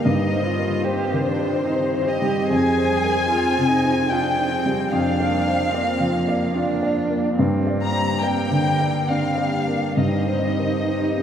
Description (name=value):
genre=neoclassical piano and strings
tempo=66-76 BPM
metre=3/4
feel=rubato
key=F dorian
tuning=A4 = 443 Hz
part: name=warm chamber violin section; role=melody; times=0.0-11.2 s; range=C5 to Bb5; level=-24 LUFS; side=left 2 dB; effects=slapback echo
part: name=dark cello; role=second line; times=0.0-11.2 s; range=Bb3 to Ab4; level=-26 LUFS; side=right 2 dB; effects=none
part: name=warm baby grand piano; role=accompaniment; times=0.0-11.2 s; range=F2 to D5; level=-22 LUFS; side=equal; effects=none
part: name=hollow soft pad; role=sustained chords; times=0.0-11.2 s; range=Bb3 to D5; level=-28 LUFS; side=equal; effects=chorus
room=wet cathedral reverb, RT60 5.3 s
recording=in a vast, echoing space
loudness=-18 LUFS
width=side -8 dB against mid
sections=0.0-11.2 A section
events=none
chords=0.1 Cm/G; 2.5 Fmadd9; 4.9 Bb/F; 7.4 Gm; 10.0 Cm/G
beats=| 0.07 0.87 1.68 | 2.52 3.32 4.12 | 4.92 5.74 6.55 | 7.39 8.23 9.09 | 9.98 10.88